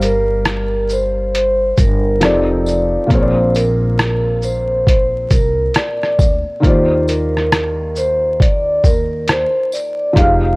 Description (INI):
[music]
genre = lo-fi hip hop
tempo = 68 BPM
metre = 4/4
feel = swing 61% on 16ths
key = unclear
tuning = A4 = 440 Hz
[part]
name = vibraphone with medium mallets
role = melody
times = 0.0-10.6 s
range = Bb4 to F5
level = -17 LUFS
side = equal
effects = low-pass filter
[part]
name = felt-muted upright piano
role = accompaniment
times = 0.0-10.6 s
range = Bb2 to F5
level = -21 LUFS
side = left 1 dB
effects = cassette tape, low-pass filter
[part]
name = upright bass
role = bass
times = 0.0-10.6 s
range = F1 to Eb2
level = -20 LUFS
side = equal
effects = none
[part]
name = lo-fi sampler-style drum kit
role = drums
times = 0.0-10.4 s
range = hi-hat, kick drum, rim click, shaker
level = -15 LUFS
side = equal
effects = none
[part]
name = tambourine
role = percussion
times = 0.0-10.0 s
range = none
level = -37 LUFS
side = left 2 dB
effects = none
[sound]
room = small room ambience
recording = dry, gritty hardware recording, vinyl crackle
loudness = -13 LUFS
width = side -26 dB against mid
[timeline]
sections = 0.0-10.6 A section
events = none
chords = 0.0 Gm7; 2.2 F13; 3.1 Bb7; 6.6 Ebmaj7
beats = 0.46 1.34 2.22 | 3.10 3.99 4.87 5.75 | 6.63 7.51 8.40 9.28 | 10.16